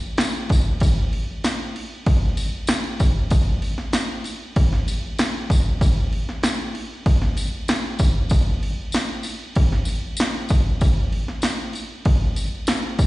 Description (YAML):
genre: rock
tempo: 96 BPM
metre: 4/4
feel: straight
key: none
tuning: none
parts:
  - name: punchy analog drum machine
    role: drums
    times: 0.2-13.1 s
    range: crash cymbal, kick drum, snare drum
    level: -19 LUFS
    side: equal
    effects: none
  - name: tambourine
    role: percussion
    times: 0.2-13.1 s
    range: none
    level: -33 LUFS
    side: left 3 dB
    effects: slapback echo
room: light reverb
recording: live gig heard through the venue's PA, recital hall reverb, nothing above 10.6 kHz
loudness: -19 LUFS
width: side -19 dB against mid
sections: 0.0-13.1 A section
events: none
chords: none